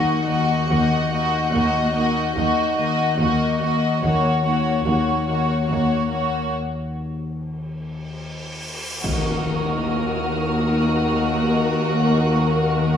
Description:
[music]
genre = cinematic, suspense film score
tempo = 72 BPM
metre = 3/4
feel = straight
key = Eb minor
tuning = A4 = 442 Hz
[part]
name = warm studio violin section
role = melody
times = 0.0-13.0 s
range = Bb4 to Eb5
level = -27 LUFS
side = left 2 dB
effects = none
[part]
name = clear studio violin section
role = second line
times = 0.0-13.0 s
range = Gb4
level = -24 LUFS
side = equal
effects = none
[part]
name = dark symphonic viola section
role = accompaniment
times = 0.0-13.0 s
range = Bb3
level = -27 LUFS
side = left 1 dB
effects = none
[part]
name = marimba with medium mallets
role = riff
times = 0.0-13.0 s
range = Eb3 to Eb4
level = -26 LUFS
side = left 4 dB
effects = none
[part]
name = dark symphonic double bass section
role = bass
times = 0.0-13.0 s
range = Eb2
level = -30 LUFS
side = right 3 dB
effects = none
[part]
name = rich symphonic cello section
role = bass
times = 0.0-13.0 s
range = Eb2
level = -26 LUFS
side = equal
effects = none
[part]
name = analog drone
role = drone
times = 0.1-13.0 s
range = Eb2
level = -31 LUFS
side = left 1 dB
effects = chorus
[part]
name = dark studio violin section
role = texture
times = 0.0-3.6, 9.0-13.0 s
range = Eb6 to Db7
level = -33 LUFS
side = equal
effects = none
[part]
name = cymbal swell and impact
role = sound effects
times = 8.1-11.5 s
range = none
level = -31 LUFS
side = equal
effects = none
[sound]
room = wet scoring stage reverb, RT60 2.1 s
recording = studio ambience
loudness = -18 LUFS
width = side -8 dB against mid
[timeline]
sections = 0.0-9.0 A section; 9.0-13.0 B section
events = break 6.5-9.0; cymbal swell 8.1-9.0; impact 9.0-11.5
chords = 0.0 Ebm

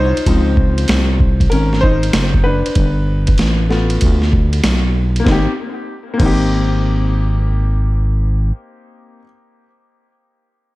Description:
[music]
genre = hip hop, jazz-hop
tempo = 96 BPM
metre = 4/4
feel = swing 66% on 16ths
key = Ab major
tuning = A4 = 440 Hz
[part]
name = clear concert grand piano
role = accompaniment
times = 0.0-9.2 s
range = C3 to C5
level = -20 LUFS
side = left 2 dB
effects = tape echo
[part]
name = growling FM bass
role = bass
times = 0.0-8.5 s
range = Gb1 to D2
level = -15 LUFS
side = equal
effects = none
[part]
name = boom bap sampler-style drum kit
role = drums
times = 0.2-6.4 s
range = crash cymbal, hi-hat, kick drum, ride cymbal, snare drum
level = -17 LUFS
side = equal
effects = none
[sound]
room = little or no reverb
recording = echo-heavy mix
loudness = -13 LUFS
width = side -19 dB against mid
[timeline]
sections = 0.0-5.3 A section; 5.3-7.8 B section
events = grand piano solo 0.0-5.3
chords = 0.3 Dbmaj9; 2.8 G9; 5.3 Abmaj7

